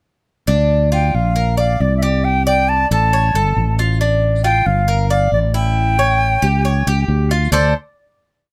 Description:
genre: latin, Cuban son and guajira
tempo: 136 BPM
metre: 4/4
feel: straight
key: D minor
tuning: A4 = 440 Hz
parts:
  - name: Cuban tres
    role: arpeggios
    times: 0.5-7.7 s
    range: D4 to D5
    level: -22 LUFS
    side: equal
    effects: none
  - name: fretless electric bass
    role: bass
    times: 0.5-7.7 s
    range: G1 to D2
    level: -18 LUFS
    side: equal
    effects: none
  - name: silver concert flute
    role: melody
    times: 0.9-7.7 s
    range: D5 to A5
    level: -20 LUFS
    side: equal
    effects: none
room: light reverb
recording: none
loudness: -16 LUFS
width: mono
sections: 0.5-7.5 verse; 7.5-8.5 final chord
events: none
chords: 0.5 Dm; 1.4 Bb; 2.2 Csus2; 3.1 A; 4.0 Dm/A; 4.9 Gm; 5.8 A7; 7.5 D5

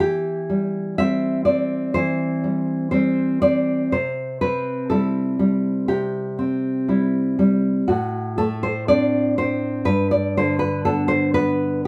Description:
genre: romantic piece for solo classical guitar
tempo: 61 BPM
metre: 4/4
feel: rubato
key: C major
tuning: A4 = 440 Hz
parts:
  - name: nylon-string guitar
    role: solo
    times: 0.0-11.9 s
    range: G2 to E5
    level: -21 LUFS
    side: equal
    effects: none
room: moderate studio reverb, RT60 0.5 s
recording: none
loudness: -21 LUFS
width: mono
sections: 0.0-11.9 A section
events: none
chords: 0.0 C/E; 3.9 C; 7.9 D5/A; 9.9 G

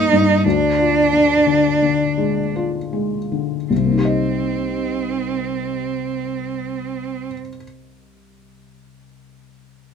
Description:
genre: neoclassical piano and strings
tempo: 51-61 BPM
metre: 3/4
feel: rubato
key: C minor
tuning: A4 = 440 Hz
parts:
  - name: rich cello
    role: second line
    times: 0.0-7.3 s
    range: C4 to Eb4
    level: -19 LUFS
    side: right 3 dB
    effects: none
  - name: felt-muted upright piano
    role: accompaniment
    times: 0.0-9.9 s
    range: C2 to Eb5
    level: -20 LUFS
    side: left 4 dB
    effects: none
room: light reverb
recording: minimal, uncompressed stereo recording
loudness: -17 LUFS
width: side -7 dB against mid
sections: 0.0-3.7 A section; 3.7-7.2 B section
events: slowing down 0.0-3.7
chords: 0.4 Ddim; 3.7 Cm7

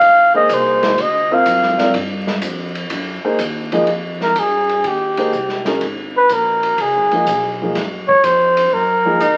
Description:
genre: jazz, small-group swing and bop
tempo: 124 BPM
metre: 4/4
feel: swing 69% on 8ths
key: F minor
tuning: A4 = 436 Hz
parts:
  - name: warm flugelhorn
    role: melody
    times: 0.0-9.4 s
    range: G4 to F5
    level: -16 LUFS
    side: equal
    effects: none
  - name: upright bass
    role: bass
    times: 0.0-9.4 s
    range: Ab1 to Ab2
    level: -32 LUFS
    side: equal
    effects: none
  - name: open jazz drum kit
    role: drums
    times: 0.0-9.4 s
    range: hi-hat, kick drum, ride cymbal, snare drum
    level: -27 LUFS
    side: equal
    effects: none
  - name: dark concert grand piano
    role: accompaniment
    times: 0.3-9.2 s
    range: F3 to Eb5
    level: -22 LUFS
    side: equal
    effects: none
  - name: warm tenor saxophone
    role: second line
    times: 9.2-9.4 s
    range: Eb4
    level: -18 LUFS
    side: equal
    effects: none
room: moderate large studio reverb, RT60 1.1 s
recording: very old 78 rpm record, vinyl crackle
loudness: -16 LUFS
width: mono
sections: 0.0-3.9 A section; 3.9-9.4 B section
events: flugelhorn solo 0.0-3.9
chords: 0.0 Fm7; 1.0 D7alt; 1.9 Fsus2; 2.9 Gb; 3.9 Fm9; 5.8 Absus2; 6.8 Db9; 7.8 Gbmaj9#11

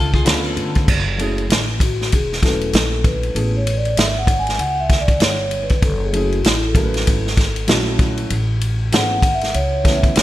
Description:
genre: hip hop, jazz-hop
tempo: 97 BPM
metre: 4/4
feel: swing 60% on 16ths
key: F# minor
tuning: A4 = 441 Hz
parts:
  - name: clean electric guitar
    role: second line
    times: 0.0-0.9 s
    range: E#4 to B4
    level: -27 LUFS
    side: left 3 dB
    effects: none
  - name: upright bass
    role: bass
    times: 0.0-10.2 s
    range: E1 to D2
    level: -22 LUFS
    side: equal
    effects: none
  - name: vintage drum kit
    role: drums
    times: 0.1-10.2 s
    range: crash cymbal, hi-hat, kick drum, ride cymbal, snare drum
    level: -17 LUFS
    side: equal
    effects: gated reverb
  - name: dark grand piano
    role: accompaniment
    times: 0.2-10.2 s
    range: D3 to B4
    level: -25 LUFS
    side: equal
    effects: none
  - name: vibraphone with soft mallets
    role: melody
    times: 1.8-10.2 s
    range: E4 to G#5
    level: -22 LUFS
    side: equal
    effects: digital delay
room: light reverb, small room reverb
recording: bright 1980s-style digital production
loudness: -15 LUFS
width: side -14 dB against mid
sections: 0.9-10.2 A section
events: vibraphone solo 0.9-10.2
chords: 0.0 C#7b9b13; 0.9 F#m7; 3.4 Amaj7; 5.8 F#m9; 8.3 Amaj9

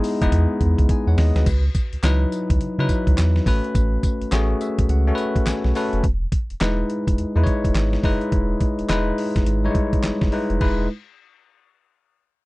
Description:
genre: R&B, new jack swing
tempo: 105 BPM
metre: 4/4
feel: swing 63% on 16ths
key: E major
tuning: A4 = 440 Hz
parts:
  - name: bell-like tine electric piano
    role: accompaniment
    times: 0.0-10.9 s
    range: F#3 to A5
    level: -23 LUFS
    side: left 1 dB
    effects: none
  - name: dusty soul sampler-style drum kit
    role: drums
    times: 0.0-10.8 s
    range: crash cymbal, handclaps, hi-hat, kick drum, snare drum, tambourine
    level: -22 LUFS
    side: equal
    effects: none
  - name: round analog bass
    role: bass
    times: 0.2-10.9 s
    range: E1 to C#3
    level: -20 LUFS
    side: equal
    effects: none
room: little or no reverb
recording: dry, close 1970s-style studio recording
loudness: -18 LUFS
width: side -20 dB against mid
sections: 0.0-1.5 A section; 1.5-10.6 B section; 10.6-12.5 C section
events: drum fill 0.3-1.5; tine electric piano fill 4.3-6.0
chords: 0.0 Emaj7; 1.5 C#m11; 3.5 A69; 6.0 Emaj7

